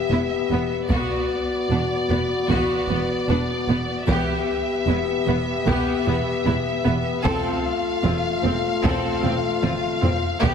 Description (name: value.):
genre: cinematic, epic orchestral film score.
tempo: 76 BPM.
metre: 4/4.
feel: straight.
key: unclear.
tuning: A4 = 440 Hz.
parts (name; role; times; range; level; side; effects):
warm symphonic violin section; melody; 0.0-10.5 s; D5 to F5; -28 LUFS; left 3 dB; none.
mellow French horn section; sustained chords; 0.0-10.5 s; A3 to G4; -25 LUFS; left 5 dB; none.
clear symphonic violin section; second line; 0.1-10.5 s; B3 to A4; -30 LUFS; left 2 dB; none.
rich symphonic viola section; accompaniment; 0.1-10.5 s; B3 to C4; -29 LUFS; right 1 dB; none.
rich studio double bass section; bass; 0.1-10.5 s; E1; -28 LUFS; right 4 dB; none.
warm symphonic cello section; bass; 0.1-10.5 s; E2; -28 LUFS; right 3 dB; none.
taiko ensemble; drums; 0.9-10.5 s; none; -28 LUFS; equal; none.
room: moderate scoring stage reverb, RT60 1.9 s.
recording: heavily compressed radio sound, multiband compression.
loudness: -20 LUFS.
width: side -7 dB against mid.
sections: 0.0-10.5 A section.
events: drum fill 9.2-10.4.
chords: 0.0 Em; 0.9 Bm/E; 4.1 Em; 7.3 F/E.